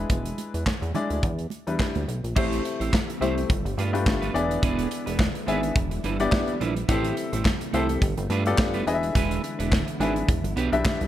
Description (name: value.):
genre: early-eighties boogie funk.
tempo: 106 BPM.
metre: 4/4.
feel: swing 56% on 16ths.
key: unclear.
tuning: A4 = 440 Hz.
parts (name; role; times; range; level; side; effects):
clear baby grand piano; accompaniment; 0.0-11.1 s; G3 to E5; -28 LUFS; left 4 dB; none.
chorused synth bass; bass; 0.0-11.1 s; E1 to G2; -28 LUFS; equal; none.
modern studio drum kit; drums; 0.1-11.1 s; crash cymbal, handclaps, hi-hat, kick drum, snare drum; -26 LUFS; equal; gated reverb.
congas; percussion; 0.1-2.1 s; none; -36 LUFS; right 7 dB; none.
soft string machine; sustained chords; 2.7-11.1 s; C3 to E4; -36 LUFS; equal; none.
clean electric guitar; riff; 2.4-11.1 s; G3 to C5; -30 LUFS; right 6 dB; analog chorus.
room: light reverb, small room ambience.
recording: none.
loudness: -22 LUFS.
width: side -12 dB against mid.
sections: 0.0-2.4 A section; 2.4-11.1 B section.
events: none.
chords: 0.0 E7; 1.2 Em7; 2.4 Am7; 3.5 G9; 4.3 E7; 5.8 Em7; 6.9 Am7; 8.0 G9; 8.9 E7; 10.3 Em7.